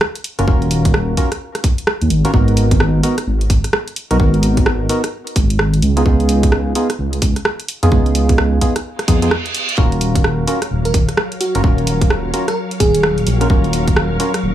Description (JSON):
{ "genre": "UK garage, two-step garage", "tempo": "129 BPM", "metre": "4/4", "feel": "swing 62% on 16ths", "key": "Eb minor", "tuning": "A4 = 440 Hz", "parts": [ { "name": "garage drum kit", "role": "drums", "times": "0.0-14.4 s", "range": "hi-hat, rim click", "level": "-20 LUFS", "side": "right 1 dB", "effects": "none" }, { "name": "percussive organ stab", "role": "stabs", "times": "0.4-14.3 s", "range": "Cb4 to Bb4", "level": "-20 LUFS", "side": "right 1 dB", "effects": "analog chorus, digital delay" }, { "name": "dark detuned saw bass", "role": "bass", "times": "0.4-14.5 s", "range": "Eb1 to F2", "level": "-16 LUFS", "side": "equal", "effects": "none" }, { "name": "electronic kick drum", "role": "drums", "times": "0.5-13.9 s", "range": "none", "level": "-14 LUFS", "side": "equal", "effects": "none" }, { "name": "reverse cymbal", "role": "sound effects", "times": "9.0-9.8 s", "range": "none", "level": "-22 LUFS", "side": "right 4 dB", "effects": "none" }, { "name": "soft string machine", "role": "sustained chords", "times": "10.4-14.5 s", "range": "Gb3 to F5", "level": "-25 LUFS", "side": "equal", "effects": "ensemble chorus, sidechain pumping" }, { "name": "bell-like FM electric piano", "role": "melody", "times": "10.9-13.5 s", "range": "Gb4 to Bb4", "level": "-20 LUFS", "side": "right 1 dB", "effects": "chorus, digital delay" } ], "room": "light reverb", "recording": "studio ambience", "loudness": "-13 LUFS", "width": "side -12 dB against mid", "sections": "0.0-14.5 A section", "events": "reverse cymbal 9.0-9.8; break 9.3-9.8", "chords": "0.0 Ebm9; 2.3 Abm9; 5.8 Db9; 9.8 Ebm9", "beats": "0.01 | 0.48 0.94 1.41 1.87 | 2.34 2.80 3.27 3.73 | 4.20 4.66 5.13 5.59 | 6.06 6.52 6.99 7.45 | 7.92 8.38 8.85 9.31 | 9.78 10.24 10.71 11.17 | 11.64 12.10 12.57 13.03 | 13.50 13.96 14.43" }